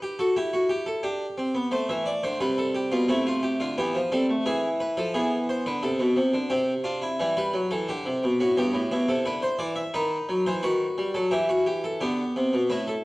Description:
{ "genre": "classical, baroque-style 3-part fugue for harpsichord", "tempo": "88 BPM", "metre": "4/4", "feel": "straight", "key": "unclear", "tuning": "A4 = 440 Hz", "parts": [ { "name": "harpsichord", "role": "solo", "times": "0.0-13.0 s", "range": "G2 to E5", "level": "-23 LUFS", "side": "equal", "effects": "none" } ], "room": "wet recital hall reverb, RT60 1.5 s", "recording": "worn, warbling old tape, cassette tape, warbly pitch drift", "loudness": "-23 LUFS", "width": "side -20 dB against mid", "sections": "0.0-12.7 A section", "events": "none", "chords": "0.4 Em; 1.7 Am; 3.1 Am/C; 4.5 E7; 5.8 Am; 7.2 Em; 8.6 Em/G; 10.0 B7/D#; 11.3 Em" }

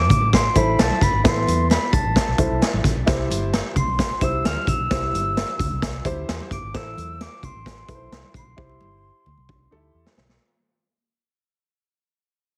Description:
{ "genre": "uptempo 1960s-style soul", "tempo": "131 BPM", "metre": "4/4", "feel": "straight", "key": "C major", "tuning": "A4 = 439 Hz", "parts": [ { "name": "breathy mellow jazz flute", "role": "melody", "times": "0.0-10.2 s", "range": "A5 to F6", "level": "-28 LUFS", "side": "equal", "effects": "none" }, { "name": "glockenspiel with hard plastic mallets", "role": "second line", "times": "0.0-10.1 s", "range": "A6 to F7", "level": "-35 LUFS", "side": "equal", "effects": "none" }, { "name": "dark upright piano", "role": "accompaniment", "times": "0.0-10.2 s", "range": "B3 to C5", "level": "-29 LUFS", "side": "equal", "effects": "none" }, { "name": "vintage muted fingered electric bass", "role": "bass", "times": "0.0-10.4 s", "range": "G1 to A2", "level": "-28 LUFS", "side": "equal", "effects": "none" }, { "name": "vintage drum kit", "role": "drums", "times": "0.1-10.4 s", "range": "hi-hat, kick drum, snare drum", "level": "-24 LUFS", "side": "equal", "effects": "none" }, { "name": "congas", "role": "percussion", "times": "0.1-10.3 s", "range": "none", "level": "-35 LUFS", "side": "equal", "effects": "none" } ], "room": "light reverb, small room ambience", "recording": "heavily compressed radio sound, multiband compression", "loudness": "-21 LUFS", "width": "mono", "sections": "0.0-10.4 A section", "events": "fade-out 0.0-10.4; drum fill 8.6-10.4", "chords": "0.0 Am; 3.1 C; 6.7 Am; 8.6 C" }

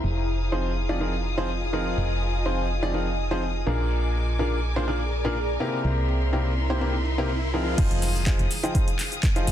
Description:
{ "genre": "piano house", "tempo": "124 BPM", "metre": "4/4", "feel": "straight", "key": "F dorian", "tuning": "A4 = 440 Hz", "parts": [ { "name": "rich studio string section", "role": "sustained chords", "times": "0.0-9.5 s", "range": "Ab4 to Eb6", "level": "-34 LUFS", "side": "left 2 dB", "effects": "sidechain pumping, low-pass filter" }, { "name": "solid FM bass", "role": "bass", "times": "0.0-9.5 s", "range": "F1 to C2", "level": "-26 LUFS", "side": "equal", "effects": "sidechain pumping" }, { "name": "house drum kit", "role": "drums", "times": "0.0-9.5 s", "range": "crash cymbal, handclaps, hi-hat, shaker", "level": "-31 LUFS", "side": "equal", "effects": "overdrive, low-pass filter on hats, low-pass filter on cymbals, low-pass filter on perc, low-pass filter on snare, low-pass filter on room" }, { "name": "ethereal airy pad", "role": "texture", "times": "0.0-7.8 s", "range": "E4 to Bb5", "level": "-34 LUFS", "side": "left 1 dB", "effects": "ensemble chorus, built-in reverb, sidechain pumping" }, { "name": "bright upright piano", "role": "riff", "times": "0.5-9.5 s", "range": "Bb2 to G5", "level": "-28 LUFS", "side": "equal", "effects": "sidechain pumping, ping-pong delay" }, { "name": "riser and impact", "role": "sound effects", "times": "5.5-9.5 s", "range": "none", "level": "-37 LUFS", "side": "equal", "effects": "none" }, { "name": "electronic kick drum", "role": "drums", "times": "7.8-9.3 s", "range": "none", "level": "-23 LUFS", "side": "equal", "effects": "none" } ], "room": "light reverb", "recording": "dense, heavily limited modern master", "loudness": "-23 LUFS", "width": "side -11 dB against mid", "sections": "0.0-7.8 A section; 7.8-9.5 B section", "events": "riser 5.5-7.8; drop 7.8-9.5; impact 7.8-9.5", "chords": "0.0 Fm7; 3.7 Bb7; 5.8 C7; 7.8 Fm7" }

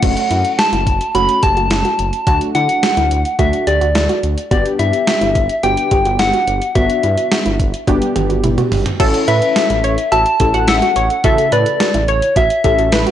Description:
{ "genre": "synth-pop", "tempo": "107 BPM", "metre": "4/4", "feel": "straight", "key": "A mixolydian", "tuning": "A4 = 440 Hz", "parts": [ { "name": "soft struck synth lead", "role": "melody", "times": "0.0-13.1 s", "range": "C#5 to B5", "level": "-16 LUFS", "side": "left 1 dB", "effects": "chorus, analog delay" }, { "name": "warm analog keys", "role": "accompaniment", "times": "0.0-13.1 s", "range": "C#3 to A4", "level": "-21 LUFS", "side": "left 1 dB", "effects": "chorus" }, { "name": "soft round pluck", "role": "arpeggios", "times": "0.0-13.1 s", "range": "E4 to G4", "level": "-23 LUFS", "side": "right 3 dB", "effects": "chorus, analog delay" }, { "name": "smooth synth bass", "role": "bass", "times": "0.0-13.1 s", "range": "F#1 to D3", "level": "-19 LUFS", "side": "equal", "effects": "none" }, { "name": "gated 80s digital drum machine", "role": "drums", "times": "0.0-13.1 s", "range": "crash cymbal, hi-hat, kick drum, snare drum, toms", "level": "-18 LUFS", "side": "equal", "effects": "gated reverb, gated reverb snare" }, { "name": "funky polysynth comp", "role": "second line", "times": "9.0-13.1 s", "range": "A4 to F#5", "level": "-20 LUFS", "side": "right 2 dB", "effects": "chorus, analog delay" } ], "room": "light reverb, digital ambience", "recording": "dry, gritty hardware recording, transformer saturation, nothing above 10.5 kHz", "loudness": "-12 LUFS", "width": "side -10 dB against mid", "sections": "0.0-9.0 A section; 9.0-13.1 B section", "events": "drum fill 7.9-9.0", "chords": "0.0 F#m; 2.3 D; 4.5 G6; 9.0 A" }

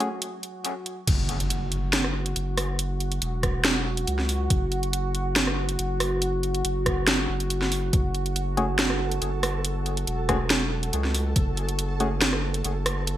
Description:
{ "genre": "deep dubstep", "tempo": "140 BPM", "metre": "4/4", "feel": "half-time", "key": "F# minor", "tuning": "A4 = 439 Hz", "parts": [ { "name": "deep dark ambient pad", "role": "sustained chords", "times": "0.0-13.2 s", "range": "F#4", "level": "-32 LUFS", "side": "right 1 dB", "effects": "chorus, built-in reverb" }, { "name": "percussive organ stab", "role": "stabs", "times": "0.0-0.1, 8.6-12.1 s", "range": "A3 to G#4", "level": "-31 LUFS", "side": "left 2 dB", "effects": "chorus, dub echo" }, { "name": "garage drum kit", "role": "drums", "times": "0.0-13.2 s", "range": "crash cymbal, hi-hat, rim click, snare drum", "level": "-25 LUFS", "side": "equal", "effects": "overdrive, gated reverb" }, { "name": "saturated sub bass", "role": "bass", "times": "1.1-13.2 s", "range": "E1 to C#2", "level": "-28 LUFS", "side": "equal", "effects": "none" }, { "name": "electronic kick drum", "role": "drums", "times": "1.1-11.5 s", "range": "none", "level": "-24 LUFS", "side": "equal", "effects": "overdrive" }, { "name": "impact", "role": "sound effects", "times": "1.1-2.8 s", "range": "none", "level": "-35 LUFS", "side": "equal", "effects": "none" }, { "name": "flickering grainy texture", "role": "texture", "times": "8.7-13.2 s", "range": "A4", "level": "-36 LUFS", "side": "right 2 dB", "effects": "built-in reverb" } ], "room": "light reverb, digital ambience", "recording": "bright 1980s-style digital production", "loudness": "-23 LUFS", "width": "side -12 dB against mid", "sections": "0.0-1.1 A section; 1.1-13.2 B section", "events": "filter sweep on ambient pad 0.0-1.1; drop 1.1-13.2; impact 1.1-2.8", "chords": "0.0 F#madd9; 1.1 F#m" }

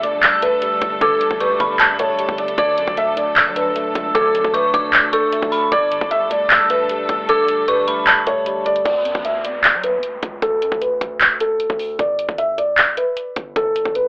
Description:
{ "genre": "hip hop, trap", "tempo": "153 BPM", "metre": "4/4", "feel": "half-time", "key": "D major", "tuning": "A4 = 442 Hz", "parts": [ { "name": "felt-muted upright piano", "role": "melody", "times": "0.0-14.1 s", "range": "A4 to E5", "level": "-18 LUFS", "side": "equal", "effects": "low-pass filter" }, { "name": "mellow tine electric piano", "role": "accompaniment", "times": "0.0-8.9 s", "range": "G2 to D4", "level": "-27 LUFS", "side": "equal", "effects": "low-pass filter" }, { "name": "dark studio string section", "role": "sustained chords", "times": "0.0-8.8 s", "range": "F#3 to A4", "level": "-28 LUFS", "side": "left 1 dB", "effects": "none" }, { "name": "hard-hitting 808-style bass", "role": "bass", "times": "0.0-14.1 s", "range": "G1 to F#3", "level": "-34 LUFS", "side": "equal", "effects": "none" }, { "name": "trap drum kit", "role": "drums", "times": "0.0-14.0 s", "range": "handclaps, hi-hat, kick drum", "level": "-16 LUFS", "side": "equal", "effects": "none" }, { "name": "dark detuned synth bell", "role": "second line", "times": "0.2-8.8 s", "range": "A5 to E6", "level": "-20 LUFS", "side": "equal", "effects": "chorus, phaser, tape echo" }, { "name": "downlifter", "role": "sound effects", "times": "8.9-12.0 s", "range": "none", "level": "-33 LUFS", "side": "equal", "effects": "none" } ], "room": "light reverb, digital ambience", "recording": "dry, gritty hardware recording, telephone sound", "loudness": "-15 LUFS", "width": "side -28 dB against mid", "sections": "0.0-8.9 A section; 8.9-14.1 B section", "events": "kick muted 7.3-8.9", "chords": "0.0 Gsus2; 2.6 D; 5.7 Gsus2; 8.9 D; 12.0 G5" }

